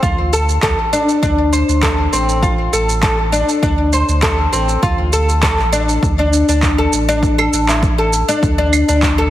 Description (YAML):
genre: organic downtempo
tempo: 100 BPM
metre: 4/4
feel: straight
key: D minor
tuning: A4 = 443 Hz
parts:
  - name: oud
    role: arpeggios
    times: 0.0-9.3 s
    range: C4 to C5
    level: -15 LUFS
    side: left 1 dB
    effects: ping-pong delay
  - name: warm sub bass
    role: bass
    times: 0.0-9.3 s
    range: A1 to D2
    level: -18 LUFS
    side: right 1 dB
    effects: sidechain pumping
  - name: electronic kick drum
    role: drums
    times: 0.0-9.2 s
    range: none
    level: -19 LUFS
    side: equal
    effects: overdrive
  - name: electronic shaker, handclaps and claves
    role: drums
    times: 0.0-9.2 s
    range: none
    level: -21 LUFS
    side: right 3 dB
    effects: overdrive
room: light reverb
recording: heavily compressed radio sound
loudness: -12 LUFS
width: side -13 dB against mid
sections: 0.0-6.0 A section; 6.0-9.3 B section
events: none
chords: 0.0 Dm7; 6.0 D5